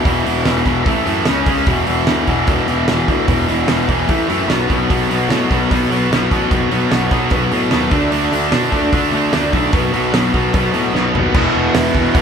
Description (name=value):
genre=punk rock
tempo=149 BPM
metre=4/4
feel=straight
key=unclear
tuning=A4 = 439 Hz
part: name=distorted electric guitar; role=riff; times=0.0-12.2 s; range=E2 to D4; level=-18 LUFS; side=left 7 dB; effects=distortion
part: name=tight distorted guitar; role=riff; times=0.0-12.2 s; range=E2 to D4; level=-19 LUFS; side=right 9 dB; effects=distortion
part: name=fuzz picked electric bass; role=bass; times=0.1-12.2 s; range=E1 to B2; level=-22 LUFS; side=equal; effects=overdrive
part: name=loose indie drum kit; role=drums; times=0.1-12.2 s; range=crash cymbal, hi-hat, kick drum, snare drum, toms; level=-19 LUFS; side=right 1 dB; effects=none
part: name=tight distorted guitar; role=riff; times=11.3-12.2 s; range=E3 to E4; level=-20 LUFS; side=right 1 dB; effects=distortion
room=moderate studio reverb, RT60 0.5 s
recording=band playing live in one room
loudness=-13 LUFS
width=side -7 dB against mid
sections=0.0-11.3 A section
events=drum fill 10.9-11.3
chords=0.0 E5; 0.9 A5; 1.3 C#5; 1.7 E5; 4.1 A5; 4.5 B5; 7.9 D5; 9.7 B5; 11.3 E